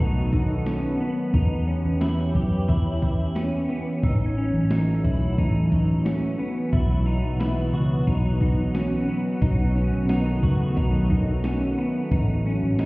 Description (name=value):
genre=dream pop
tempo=89 BPM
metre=4/4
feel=straight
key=unclear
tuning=A4 = 439 Hz
part: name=lush unison pad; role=sustained chords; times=0.0-12.9 s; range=B2 to G4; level=-27 LUFS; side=right 1 dB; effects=chorus
part: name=clean electric guitar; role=arpeggios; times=0.0-12.9 s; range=B3 to G4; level=-29 LUFS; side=equal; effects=ensemble chorus, ping-pong delay
part: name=vintage muted picked electric bass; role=bass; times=0.0-12.9 s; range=A1 to F#2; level=-23 LUFS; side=equal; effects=none
part: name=glockenspiel with rubber mallets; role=texture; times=0.0-8.4 s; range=A5 to A6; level=-48 LUFS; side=right 4 dB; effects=ping-pong delay
part: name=clean 12-bit digital drum machine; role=drums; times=0.3-12.9 s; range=hi-hat, kick drum, snare drum, tambourine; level=-24 LUFS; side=equal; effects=none
room=light reverb, digital ambience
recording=heard muffled through a wall, stone room reverb, EQ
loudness=-20 LUFS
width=side -22 dB against mid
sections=0.0-12.9 A section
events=none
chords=0.0 B7; 1.3 Em6; 4.0 A6; 6.7 Bsus4; 9.4 B7; 12.1 A6